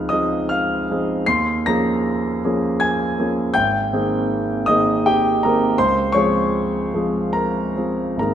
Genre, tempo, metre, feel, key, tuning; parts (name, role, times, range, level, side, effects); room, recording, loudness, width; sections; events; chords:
classical, impressionist solo piano; 68-83 BPM; 3/4; rubato; A4 = 440 Hz
clear concert grand piano; solo; 0.0-8.3 s; Ab1 to C7; -17 LUFS; equal
wet scoring stage reverb, RT60 2.0 s; nothing above 10.8 kHz; -17 LUFS; side -9 dB against mid
0.0-8.3 A section
0.0 Dbmaj9; 1.2 Eb9sus4; 3.5 Abmaj9; 5.8 Dbmaj7